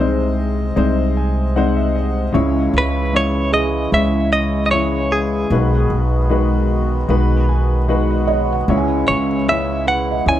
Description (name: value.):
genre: acoustic folk-pop ballad.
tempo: 76 BPM.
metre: 4/4.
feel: straight.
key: C# minor.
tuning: A4 = 440 Hz.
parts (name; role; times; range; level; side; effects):
direct-recorded clean electric guitar; melody; 0.0-10.4 s; G#4 to G#5; -19 LUFS; right 1 dB; tremolo.
warm upright piano; accompaniment; 0.0-10.4 s; B1 to G#5; -19 LUFS; left 2 dB; none.
hand-pumped harmonium; sustained chords; 0.0-10.4 s; B#2 to D#5; -26 LUFS; equal; none.
upright bass; bass; 0.0-10.4 s; B1 to C#2; -19 LUFS; equal; none.
felt-muted upright piano; arpeggios; 3.5-10.4 s; E4 to G#5; -24 LUFS; right 7 dB; none.
room: light reverb.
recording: close, detailed microphones.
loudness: -15 LUFS.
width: side -12 dB against mid.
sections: 0.0-10.4 A section.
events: none.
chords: 0.0 G#/B#; 2.3 C#m; 5.5 G#m7/B; 8.7 C#m.